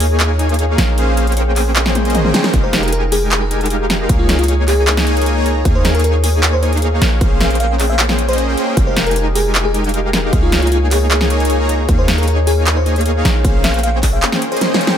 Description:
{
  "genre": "future bass",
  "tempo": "154 BPM",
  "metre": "4/4",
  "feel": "half-time",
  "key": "unclear",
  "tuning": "A4 = 438 Hz",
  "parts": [
    { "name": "Celtic harp", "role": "arpeggios", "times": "0.0-15.0 s", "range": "Eb4 to Ab5", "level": "-24 LUFS", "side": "left 4 dB", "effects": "sidechain pumping, ping-pong delay" },
    { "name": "soft supersaw", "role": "riff", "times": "0.0-15.0 s", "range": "Ab3 to Bb5", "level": "-19 LUFS", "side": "equal", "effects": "sidechain pumping" },
    { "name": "warm 808-style bass", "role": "bass", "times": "0.0-14.2 s", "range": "F1 to Eb2", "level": "-16 LUFS", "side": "equal", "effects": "sidechain pumping" },
    { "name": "big-room dance drum kit", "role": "drums", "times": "0.0-15.0 s", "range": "handclaps, hi-hat, snare drum, toms", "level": "-18 LUFS", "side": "equal", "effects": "none" },
    { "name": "electronic kick drum", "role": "drums", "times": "2.5-14.1 s", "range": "none", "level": "-15 LUFS", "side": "equal", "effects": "none" },
    { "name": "bell-like FM electric piano", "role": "melody", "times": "2.6-14.7 s", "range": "F4 to F5", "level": "-22 LUFS", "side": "left 1 dB", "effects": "chorus, tremolo, sidechain pumping, digital delay" }
  ],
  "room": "digital ambience",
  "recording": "none",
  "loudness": "-12 LUFS",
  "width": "side -9 dB against mid",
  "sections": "0.0-15.0 A section",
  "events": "kick drops out 1.0-2.5; drum fill 2.0-2.5, 14.6-15.0",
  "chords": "0.0 Eb9sus4; 0.8 Bbm9; 2.5 Fm11; 4.1 Db69; 5.7 Eb9sus4; 7.0 Bbm9; 8.8 Fm11; 10.3 Db69; 11.9 Eb9sus4; 13.2 Bbm9"
}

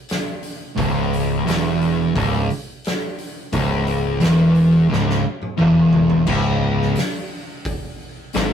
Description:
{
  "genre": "stoner and doom metal",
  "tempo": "87 BPM",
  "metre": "4/4",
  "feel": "straight",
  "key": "C# minor",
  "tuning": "A4 = 439 Hz",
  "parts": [
    { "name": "oversized low-tuned drum kit", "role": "drums", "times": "0.1-8.5 s", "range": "crash cymbal, hi-hat, kick drum, snare drum, toms", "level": "-26 LUFS", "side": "equal", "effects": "none" },
    { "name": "fuzz guitar", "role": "riff", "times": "0.8-8.5 s", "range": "C#2 to G#2", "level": "-16 LUFS", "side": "equal", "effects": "distortion" },
    { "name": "growling picked electric bass", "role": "bass", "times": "0.8-8.5 s", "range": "C#1 to G#1", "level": "-24 LUFS", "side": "equal", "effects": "overdrive" }
  ],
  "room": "moderate small room reverb, RT60 0.5 s",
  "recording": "rough rehearsal-room recording",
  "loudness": "-16 LUFS",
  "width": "side -8 dB against mid",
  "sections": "0.0-6.3 A section; 6.3-8.5 B section",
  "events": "drum fill 4.9-6.3",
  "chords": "0.0 C#m; 6.3 C#5"
}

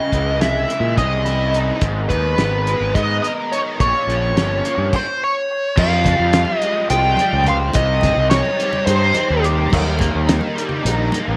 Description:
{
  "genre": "psychedelic rock",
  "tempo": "212 BPM (eighths)",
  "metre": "7/8",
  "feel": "straight",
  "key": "F minor",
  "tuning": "A4 = 439 Hz",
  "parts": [
    { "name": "smooth overdriven lead guitar", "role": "melody", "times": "0.0-9.5 s", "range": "Cb5 to G5", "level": "-22 LUFS", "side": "equal", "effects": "wah, tape echo" },
    { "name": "string machine, cellos", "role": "sustained chords", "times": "0.0-11.4 s", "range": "G3 to Bb5", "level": "-34 LUFS", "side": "equal", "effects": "none" },
    { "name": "overdriven electric guitar", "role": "riff", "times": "0.0-11.4 s", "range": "Ab2 to C5", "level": "-26 LUFS", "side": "equal", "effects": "flanger" },
    { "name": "fuzz fingered electric bass", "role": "bass", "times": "0.1-11.4 s", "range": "G1 to Bb2", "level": "-22 LUFS", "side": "equal", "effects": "overdrive" },
    { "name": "cloth-damped thuddy drum kit", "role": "drums", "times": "0.1-11.3 s", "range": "crash cymbal, hi-hat, kick drum, snare drum", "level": "-23 LUFS", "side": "equal", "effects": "none" },
    { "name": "congas", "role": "percussion", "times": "5.8-11.3 s", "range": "none", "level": "-30 LUFS", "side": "equal", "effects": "none" }
  ],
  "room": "moderate spring reverb, RT60 2.8 s",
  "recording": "none",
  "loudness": "-18 LUFS",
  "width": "mono",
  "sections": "0.0-5.8 A section; 5.8-11.4 B section",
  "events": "none",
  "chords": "0.0 Dbmadd9; 1.8 Abmadd9; 3.8 Bbm; 5.8 Fmadd9; 7.7 Cm; 9.7 Eb"
}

